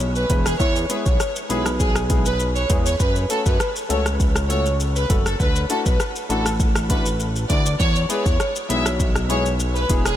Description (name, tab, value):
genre	dancehall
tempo	100 BPM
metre	4/4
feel	straight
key	unclear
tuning	A4 = 440 Hz
part	fat analog bass	bass	0.0-10.2 s	E1 to F#2	-22 LUFS	equal	none
part	afro-pop drum kit	drums	0.0-10.2 s	hi-hat, kick drum, rim click, shaker	-22 LUFS	equal	none
part	warm symphonic violin section	melody	0.2-10.1 s	G#4 to E5	-24 LUFS	equal	ping-pong delay
part	dark concert grand piano	accompaniment	0.3-10.0 s	G#3 to B4	-28 LUFS	left 3 dB	none
room	light reverb, digital ambience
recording	none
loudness	-18 LUFS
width	side -12 dB against mid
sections	0.0-10.2 A section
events	none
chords	0.0 E; 3.0 F#m; 5.4 Dadd9; 7.8 E